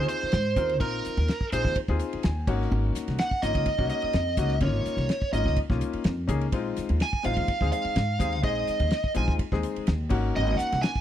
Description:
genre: electric jazz fusion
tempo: 126 BPM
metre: 4/4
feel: swing 53% on 16ths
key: Bb minor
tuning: A4 = 439 Hz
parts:
  - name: bluesy overdriven lead guitar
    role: melody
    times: 0.0-11.0 s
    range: Bb4 to Ab5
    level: -28 LUFS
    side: right 3 dB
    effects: distortion
  - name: bright concert grand piano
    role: accompaniment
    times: 0.0-10.9 s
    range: Ab3 to Ab5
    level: -32 LUFS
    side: left 6 dB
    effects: none
  - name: upright bass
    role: bass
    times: 0.0-11.0 s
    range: Ab1 to Ab2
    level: -28 LUFS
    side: equal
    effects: none
  - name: damped 70s drum kit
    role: drums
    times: 0.1-11.0 s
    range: crash cymbal, hi-hat, kick drum, ride cymbal, snare drum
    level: -29 LUFS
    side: equal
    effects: none
room: small room ambience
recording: dry, close 1970s-style studio recording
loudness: -24 LUFS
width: side -11 dB against mid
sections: 0.0-11.0 A section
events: lead electric guitar solo 0.0-11.0; grand piano fill 2.0-2.7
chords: 0.0 Bb9sus4; 2.5 Ab9sus4; 6.5 Bb9sus4; 10.1 Ab9sus4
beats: 0.33 | 0.80 1.28 1.76 2.23 | 2.71 3.19 3.67 4.14 | 4.62 5.10 5.57 6.05 | 6.53 7.01 7.49 7.96 | 8.44 8.92 9.40 9.88 | 10.36 10.83

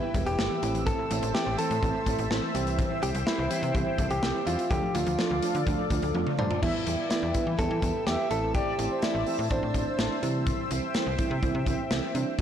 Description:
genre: synth-pop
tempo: 125 BPM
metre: 4/4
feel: straight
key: unclear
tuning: A4 = 442 Hz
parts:
  - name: direct-recorded clean electric guitar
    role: melody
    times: 0.0-10.2 s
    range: D4 to A4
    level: -31 LUFS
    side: equal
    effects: slapback echo
  - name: soft electric-piano-like synth keys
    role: accompaniment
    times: 0.0-12.4 s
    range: E3 to C5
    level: -33 LUFS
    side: right 5 dB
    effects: chorus
  - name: phased analog pad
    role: sustained chords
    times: 0.0-12.4 s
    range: A4 to E6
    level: -34 LUFS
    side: left 1 dB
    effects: phaser, chorus
  - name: wide unison pluck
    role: arpeggios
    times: 0.0-6.6 s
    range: E3 to F4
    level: -37 LUFS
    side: left 4 dB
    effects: slapback echo
  - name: slap-like FM bass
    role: bass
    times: 0.1-12.4 s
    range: E1 to E3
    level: -32 LUFS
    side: equal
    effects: none
  - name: modern studio drum kit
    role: drums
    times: 0.1-12.4 s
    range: crash cymbal, hi-hat, kick drum, snare drum, toms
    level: -31 LUFS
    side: equal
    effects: none
  - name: mellow synth brass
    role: second line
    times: 6.6-10.1 s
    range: C5 to E5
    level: -35 LUFS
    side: equal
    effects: chorus, slapback echo
room: moderate lush hall reverb, RT60 2.5 s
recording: blown-out, overdriven recording, overdrive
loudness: -25 LUFS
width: side -9 dB against mid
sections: 0.0-6.6 A section; 6.6-12.4 B section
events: drum fill 6.1-6.6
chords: 0.0 Em; 0.6 Am; 2.5 C; 4.7 Dm; 6.6 Em; 8.3 Am; 10.2 C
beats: 0.39 | 0.87 1.35 1.83 2.31 | 2.79 3.27 3.75 4.23 | 4.71 5.19 5.67 6.15 | 6.63 7.11 7.59 8.07 | 8.55 9.03 9.51 9.99 | 10.47 10.95 11.43 11.91 | 12.39

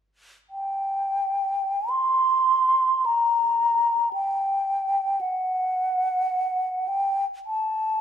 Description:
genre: classical, free, expressive piece for unaccompanied flute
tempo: 40-56 BPM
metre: 4/4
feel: rubato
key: G minor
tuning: A4 = 440 Hz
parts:
  - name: mellow hollow concert flute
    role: solo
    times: 0.5-8.0 s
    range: F#5 to C6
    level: -21 LUFS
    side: equal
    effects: none
room: moderate recital hall reverb, RT60 1.4 s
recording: minimal, uncompressed stereo recording, lossy compression artefacts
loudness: -21 LUFS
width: side -9 dB against mid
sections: 0.5-8.0 A section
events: none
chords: none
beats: | 0.50 1.89 3.04 4.13 | 5.21 6.32 7.45

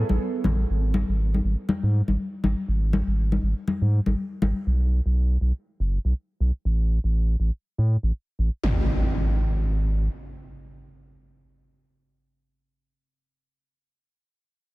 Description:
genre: deep house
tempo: 121 BPM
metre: 4/4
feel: swing 56% on 16ths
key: unclear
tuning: A4 = 445 Hz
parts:
  - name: warbly tape-like pad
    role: sustained chords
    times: 0.0-0.7 s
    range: B3 to C#5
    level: -32 LUFS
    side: right 5 dB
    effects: chorus, built-in reverb
  - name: round analog bass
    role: bass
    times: 0.0-10.1 s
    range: F#1 to A2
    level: -22 LUFS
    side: equal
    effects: none
  - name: congas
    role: percussion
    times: 0.1-4.5 s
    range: none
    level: -27 LUFS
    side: left 3 dB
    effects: none
  - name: impact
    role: sound effects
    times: 8.6-12.9 s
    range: none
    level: -28 LUFS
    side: equal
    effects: none
room: digital ambience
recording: dense, heavily limited modern master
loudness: -22 LUFS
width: side -20 dB against mid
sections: 0.0-8.6 A section; 8.6-12.6 B section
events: none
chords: 0.0 Amaj9; 0.7 N.C.; 4.7 B5; 6.7 N.C.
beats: 0.20 | 0.70 1.20 1.69 2.19 | 2.69 3.18 3.68 4.17 | 4.67 5.16 5.66 6.16 | 6.65 7.15 7.64 8.14 | 8.63 9.13 9.63 10.12 | 10.62 11.11 11.61 12.11

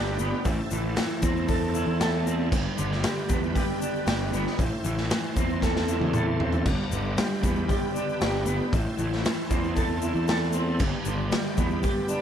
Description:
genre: psychedelic rock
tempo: 116 BPM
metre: 4/4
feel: straight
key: A minor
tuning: A4 = 443 Hz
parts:
  - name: bright tonewheel organ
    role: sustained chords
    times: 0.0-12.2 s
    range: G4 to C6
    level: -40 LUFS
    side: right 3 dB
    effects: slow rotary speaker, overdrive, chorus vibrato
  - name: electric guitar through a small old amp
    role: riff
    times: 0.0-12.2 s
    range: G2 to A4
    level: -28 LUFS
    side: equal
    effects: harmonic tremolo, double-tracked left and right
  - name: fuzz picked electric bass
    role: bass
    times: 0.0-11.8 s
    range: G1 to E2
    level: -29 LUFS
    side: equal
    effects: overdrive
  - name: egg shaker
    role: percussion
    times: 0.2-12.2 s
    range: none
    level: -42 LUFS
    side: left 12 dB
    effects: none
  - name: raw garage drum kit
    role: drums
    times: 0.5-12.0 s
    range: crash cymbal, hi-hat, kick drum, snare drum, toms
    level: -28 LUFS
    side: equal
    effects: none
room: little or no reverb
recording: none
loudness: -24 LUFS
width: side -9 dB against mid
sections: 0.0-12.2 A section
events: drum fill 5.6-6.7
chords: 0.5 Am; 2.5 G; 4.6 Am; 6.7 G; 8.7 Am; 10.8 G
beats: | 0.45 0.97 1.49 2.00 | 2.52 3.04 3.56 4.07 | 4.59 5.11 5.63 6.14 | 6.66 7.18 7.70 8.22 | 8.73 9.25 9.77 10.29 | 10.81 11.32 11.84

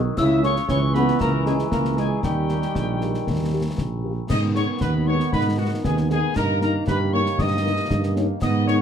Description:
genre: military-style march for wind band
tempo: 116 BPM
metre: 2/4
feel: straight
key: G# minor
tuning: A4 = 440 Hz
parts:
  - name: dark French horn section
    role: accompaniment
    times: 0.0-8.8 s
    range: G#3 to G#4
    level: -29 LUFS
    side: left 7 dB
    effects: none
  - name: warm trombone section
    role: sustained chords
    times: 0.0-8.8 s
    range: C#3 to B3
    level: -30 LUFS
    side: equal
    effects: none
  - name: dark tuba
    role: bass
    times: 0.0-8.8 s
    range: A#1 to G#2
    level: -23 LUFS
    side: right 2 dB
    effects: none
  - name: dark trumpet section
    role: melody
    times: 0.2-8.8 s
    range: F#4 to E5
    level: -29 LUFS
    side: equal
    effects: none
  - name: glockenspiel with soft plastic mallets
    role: second line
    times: 0.2-3.7 s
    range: G5 to E6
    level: -32 LUFS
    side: left 4 dB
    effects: none
  - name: mellow euphonium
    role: second line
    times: 0.2-8.8 s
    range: G3 to G4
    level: -27 LUFS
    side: right 2 dB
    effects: none
  - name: mellow piccolo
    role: second line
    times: 0.2-8.7 s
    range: F#5 to E6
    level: -32 LUFS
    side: left 7 dB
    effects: none
  - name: concert snare drum, clash cymbals and concert bass drum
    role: drums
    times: 0.2-8.8 s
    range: none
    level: -28 LUFS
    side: left 2 dB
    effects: none
room: light reverb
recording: dark, warm production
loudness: -19 LUFS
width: side -8 dB against mid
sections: 0.0-4.3 A section; 4.3-8.8 B section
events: none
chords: 0.2 A#m7b5/C#; 2.2 D#; 4.3 G#m; 6.4 D#/G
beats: | 0.17 0.69 | 1.21 1.72 | 2.24 2.75 | 3.27 3.78 | 4.30 4.81 | 5.33 5.84 | 6.36 6.87 | 7.39 7.90 | 8.42

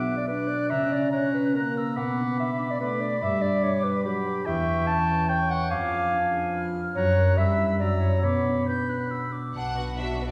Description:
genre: classical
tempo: 143 BPM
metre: 3/4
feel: rubato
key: B minor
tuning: A4 = 441 Hz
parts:
  - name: bright concert flute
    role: second line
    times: 0.0-9.5 s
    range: C#6 to G6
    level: -36 LUFS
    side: equal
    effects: none
  - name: clear oboe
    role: second line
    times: 0.0-9.3 s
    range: G5 to D6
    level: -37 LUFS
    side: equal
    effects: none
  - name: mellow clarinet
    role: second line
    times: 0.0-9.3 s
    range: G4 to A5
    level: -30 LUFS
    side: equal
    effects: none
  - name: mellow French horn section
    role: sustained chords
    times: 0.0-9.3 s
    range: E3 to D4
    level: -31 LUFS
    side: equal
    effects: none
  - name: concert harp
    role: arpeggios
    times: 0.0-10.3 s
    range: E2 to C#5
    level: -32 LUFS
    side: equal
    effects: none
  - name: rich symphonic violin section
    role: melody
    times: 9.5-10.3 s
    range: E5 to F#5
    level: -35 LUFS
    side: equal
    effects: none
  - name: rich symphonic double bass section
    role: bass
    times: 9.5-10.3 s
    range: B1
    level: -38 LUFS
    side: equal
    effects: none
  - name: rich studio violin section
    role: second line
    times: 9.6-10.3 s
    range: B3 to F#4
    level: -39 LUFS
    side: equal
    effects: none
  - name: clear symphonic cello section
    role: bass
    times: 9.6-10.3 s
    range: B2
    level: -44 LUFS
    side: equal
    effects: none
  - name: rich symphonic viola section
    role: accompaniment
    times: 10.0-10.3 s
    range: F#4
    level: -37 LUFS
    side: equal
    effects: none
room: wet scoring stage reverb, RT60 1.6 s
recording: heard from further back in the room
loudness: -25 LUFS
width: mono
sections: 0.0-9.6 A section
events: none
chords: 0.0 Bm; 0.7 F#7/C#; 2.0 Bm; 3.2 G; 4.5 C#dim/E; 5.7 Fdim7; 7.0 F#; 7.4 Em/G; 7.8 F#7b9; 8.2 Bm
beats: 0.28 | 0.70 1.12 1.54 | 1.97 2.39 2.81 | 3.22 3.64 4.05 | 4.47 4.88 5.30 | 5.71 6.12 6.54 | 6.96 7.38 7.80 | 8.24 8.68 9.12 | 9.55 9.98

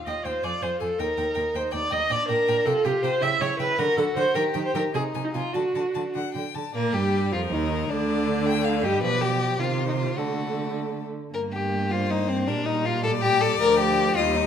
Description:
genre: quick classical-period movement for string quartet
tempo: 106 BPM (dotted quarters)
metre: 6/8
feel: rubato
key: G minor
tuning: A4 = 440 Hz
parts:
  - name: rich violin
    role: second line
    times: 0.0-14.5 s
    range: C4 to B4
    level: -27 LUFS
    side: left 4 dB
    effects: none
  - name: rich violin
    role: melody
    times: 0.1-14.5 s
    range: A4 to A5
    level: -32 LUFS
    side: left 11 dB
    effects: none
  - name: rich viola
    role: accompaniment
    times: 0.1-14.5 s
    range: D3 to E5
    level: -26 LUFS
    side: right 1 dB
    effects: none
  - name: warm cello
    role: bass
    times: 0.1-14.5 s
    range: D2 to Eb3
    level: -29 LUFS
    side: right 5 dB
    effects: none
room: moderate recital hall reverb, RT60 1.7 s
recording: none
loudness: -22 LUFS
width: side -8 dB against mid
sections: 0.0-6.7 A section; 6.7-14.5 B section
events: none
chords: 0.4 Fm6; 1.0 Eb; 2.1 Gm; 2.7 Fadd9; 3.2 C#m7b5; 3.8 D; 4.4 Eb; 4.9 Ab; 5.5 D; 6.7 Gm; 7.9 G5/D; 9.0 G7/B; 9.6 Cm; 10.2 D; 11.3 Gm; 12.5 Gm/Bb; 13.6 Dmadd11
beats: 0.43 | 0.99 1.55 | 2.11 2.66 | 3.22 3.79 | 4.36 4.95 | 5.55 6.15 | 6.75 7.33 | 7.90 8.46 | 9.03 9.60 | 10.17 10.75 | 11.34 11.91 | 12.47 13.03 | 13.59 14.16

